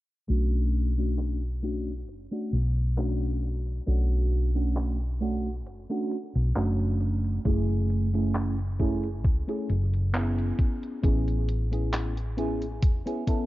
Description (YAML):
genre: vaporwave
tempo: 67 BPM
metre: 4/4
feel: swing 54% on 16ths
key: B dorian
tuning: A4 = 440 Hz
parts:
  - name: mellow FM electric piano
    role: accompaniment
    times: 0.3-13.5 s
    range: A3 to A4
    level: -31 LUFS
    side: right 1 dB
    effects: phaser, lush chorus, analog delay
  - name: hollow-body short-scale fingered electric bass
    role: bass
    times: 0.3-13.0 s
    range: E1 to C#2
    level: -26 LUFS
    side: equal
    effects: none
  - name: detuned 8-bit digital drum machine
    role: drums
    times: 0.3-13.5 s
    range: handclaps, hi-hat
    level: -37 LUFS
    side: equal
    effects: studio reverb
  - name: electronic kick drum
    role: drums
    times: 7.5-13.5 s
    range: none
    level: -25 LUFS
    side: equal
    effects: studio reverb
room: little or no reverb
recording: dark, warm production, low-pass filter, nothing above 7.5 kHz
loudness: -25 LUFS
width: side -17 dB against mid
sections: 0.3-13.5 A section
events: filter sweep 0.3-13.5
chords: 0.3 Bm9; 7.5 F#m9; 10.6 Amaj9